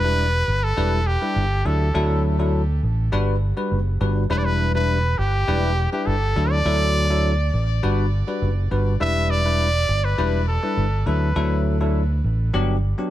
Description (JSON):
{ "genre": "afrobeats", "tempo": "102 BPM", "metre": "4/4", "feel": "straight", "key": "E minor", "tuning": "A4 = 440 Hz", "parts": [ { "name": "clear trumpet", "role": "melody", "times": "0.0-11.7 s", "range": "G4 to E5", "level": "-25 LUFS", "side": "equal", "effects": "ping-pong delay" }, { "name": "bell-like tine electric piano", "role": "accompaniment", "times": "0.0-13.1 s", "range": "F#3 to B4", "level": "-25 LUFS", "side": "left 2 dB", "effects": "lush chorus" }, { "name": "fingered electric bass", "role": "bass", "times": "0.0-12.9 s", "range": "E1 to D2", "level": "-20 LUFS", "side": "right 1 dB", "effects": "none" } ], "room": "little or no reverb", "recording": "none", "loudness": "-18 LUFS", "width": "side -13 dB against mid", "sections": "0.0-13.1 A section", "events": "none", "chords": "0.0 Em7; 1.7 Dadd9; 3.1 Gmaj7; 4.3 Em7; 6.4 Dadd9; 7.8 Gmaj7; 9.0 Em7; 11.1 Dadd9; 12.5 Gmaj7", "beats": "0.18 0.77 1.36 | 1.95 2.54 3.12 3.71 | 4.30 4.89 5.48 6.07 | 6.65 7.24 7.83 8.42 | 9.01 9.60 10.18 10.77 | 11.36 11.95 12.54" }